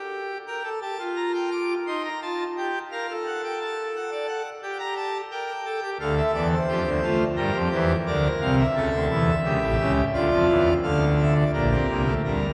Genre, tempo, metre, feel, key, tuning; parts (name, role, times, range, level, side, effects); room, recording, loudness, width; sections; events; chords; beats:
classical, baroque-style 4-part fugue for pipe organ; 86 BPM; 4/4; straight; G minor; A4 = 440 Hz
pipe organ, full organ; solo; 0.0-12.5 s; A1 to D6; -25 LUFS; equal
wet cathedral reverb, RT60 5.7 s; heard from further back in the room; -25 LUFS; mono
0.5-11.5 A section
0.5 Gm; 1.9 Cm/Eb; 3.3 D/A; 4.6 Gm; 6.0 Dm; 7.4 Gm; 8.7 A7/C#; 10.1 Dm; 11.5 Gm/Bb
| 0.47 1.18 1.88 2.58 | 3.26 3.95 4.63 5.31 | 5.99 6.68 7.36 8.05 | 8.75 9.44 10.13 10.83 | 11.54 12.24